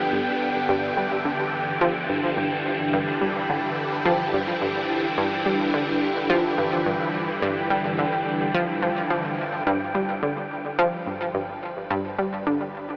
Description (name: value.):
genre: ambient, sequencer-driven space music.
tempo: 107 BPM.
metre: 4/4.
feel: straight.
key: unclear.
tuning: A4 = 441 Hz.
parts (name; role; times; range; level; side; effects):
phased string machine; sustained chords; 0.0-13.0 s; G2 to B4; -26 LUFS; equal; ensemble chorus, phaser, shimmer reverb.
analog pluck; riff; 0.0-12.7 s; G2 to G3; -25 LUFS; equal; chorus, tape echo, shimmer reverb.
wind-like tuned noise texture; texture; 0.0-9.7 s; G5; -30 LUFS; equal; built-in reverb, shimmer reverb.
round analog bass; bass; 9.7-13.0 s; G1; -53 LUFS; equal; none.
room: wet huge ambient reverb, RT60 7.9 s.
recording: AM radio sound.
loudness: -22 LUFS.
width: side -34 dB against mid.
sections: 0.0-9.7 A section; 9.7-13.0 B section.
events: filter sweep on synth arpeggio sound 0.0-9.7.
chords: 0.0 G.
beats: 0.13 | 0.69 1.25 1.81 2.37 | 2.93 3.49 4.05 4.62 | 5.18 5.74 6.30 6.86 | 7.42 7.98 8.54 9.10 | 9.66 10.22 10.78 11.35 | 11.91 12.47.